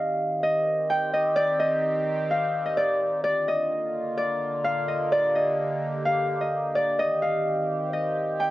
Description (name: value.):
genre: hip hop.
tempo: 128 BPM.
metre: 4/4.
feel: half-time.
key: C minor.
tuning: A4 = 440 Hz.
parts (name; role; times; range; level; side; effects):
Celtic harp; melody; 0.0-8.5 s; D5 to G5; -23 LUFS; equal; cassette tape, analog delay.
sweeping resonant pad; sustained chords; 0.0-8.5 s; D3 to G4; -32 LUFS; right 1 dB; chorus, phaser, cassette tape.
room: moderate booth ambience, RT60 0.2 s.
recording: home recording on cassette.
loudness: -23 LUFS.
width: side -16 dB against mid.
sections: 0.0-8.5 A section.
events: none.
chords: 0.0 Cm; 3.2 Bb; 7.0 Cm.